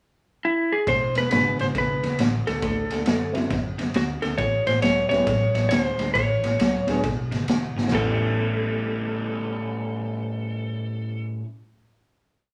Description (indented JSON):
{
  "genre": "electric blues shuffle",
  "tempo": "136 BPM",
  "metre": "4/4",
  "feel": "swing 64% on 8ths",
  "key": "A mixolydian",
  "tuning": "A4 = 444 Hz",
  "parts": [
    { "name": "electric slide guitar", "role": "melody", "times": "0.4-11.3 s", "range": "E4 to C#5", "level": "-27 LUFS", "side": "equal", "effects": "none" },
    { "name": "crunchy overdriven guitar", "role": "riff", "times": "0.9-11.5 s", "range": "E2 to E4", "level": "-31 LUFS", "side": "equal", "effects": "phaser" },
    { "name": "vintage muted fingered electric bass", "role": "bass", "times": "0.9-11.2 s", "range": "E1 to F#2", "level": "-32 LUFS", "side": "equal", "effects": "none" },
    { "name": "crunchy breakbeat drum kit", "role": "drums", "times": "0.9-8.1 s", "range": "china cymbal, kick drum, ride cymbal, snare drum, toms", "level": "-28 LUFS", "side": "equal", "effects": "none" },
    { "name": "dark upright piano", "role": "accompaniment", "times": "1.3-11.4 s", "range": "A2 to G#4", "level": "-35 LUFS", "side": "equal", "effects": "none" }
  ],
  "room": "moderate studio reverb, RT60 1.0 s",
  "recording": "band playing live in one room, small room ambience",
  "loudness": "-24 LUFS",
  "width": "mono",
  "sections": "0.0-0.9 pickup bar; 0.9-7.9 head; 7.9-11.5 final chord",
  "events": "drum fill 7.7",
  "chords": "0.0 N.C.; 0.9 E7; 2.6 D7; 4.4 A7; 7.0 E7; 7.9 A7",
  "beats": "0.00 0.44 | 0.88 1.32 1.76 2.20 | 2.64 3.08 3.52 3.96 | 4.40 4.84 5.28 5.72 | 6.16 6.61 7.05 7.49 | 7.93 8.37 8.81 9.25 | 9.70 10.13 10.57 11.02"
}